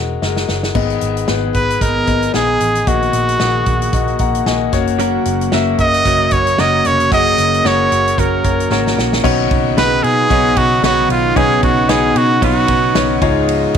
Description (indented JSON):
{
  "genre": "piano-driven pop",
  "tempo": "113 BPM",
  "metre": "4/4",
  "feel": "swing 56% on 16ths",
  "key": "B lydian from 9.2 s",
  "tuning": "A4 = 441 Hz",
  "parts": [
    { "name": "clear concert grand piano", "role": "accompaniment", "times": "0.0-13.8 s", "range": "G#2 to A#5", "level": "-19 LUFS", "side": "left 10 dB", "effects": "none" },
    { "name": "vintage muted picked electric bass", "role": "bass", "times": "0.0-13.8 s", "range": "E1 to B2", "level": "-21 LUFS", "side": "right 1 dB", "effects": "none" },
    { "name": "natural country drum kit", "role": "drums", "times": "0.2-13.8 s", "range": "crash cymbal, hi-hat, kick drum, ride cymbal, snare drum", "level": "-21 LUFS", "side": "right 1 dB", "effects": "none" },
    { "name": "airy breathy pad", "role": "sustained chords", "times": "1.2-13.8 s", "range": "C#3 to G#4", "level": "-22 LUFS", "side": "equal", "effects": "chorus" },
    { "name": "brilliant trumpet", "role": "melody", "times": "1.5-13.2 s", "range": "E#4 to D#5", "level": "-15 LUFS", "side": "right 2 dB", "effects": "none" },
    { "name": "direct-recorded clean electric guitar", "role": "riff", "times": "5.0-13.8 s", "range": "B2 to B4", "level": "-21 LUFS", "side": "right 13 dB", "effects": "none" }
  ],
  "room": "moderate spring reverb, RT60 1.4 s, small room ambience",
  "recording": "1960s-style stereo with parts hard left and right",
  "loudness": "-12 LUFS",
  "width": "side -7 dB against mid",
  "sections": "0.7-9.2 A section; 9.2-13.8 B section",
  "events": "drum fill 0.0-0.7, 8.7-9.2; grand piano fill 3.9-5.0",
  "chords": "0.0 F#add9; 0.7 G#m; 2.9 D#m/A#; 4.7 F#; 9.2 Badd9; 13.2 C#add9"
}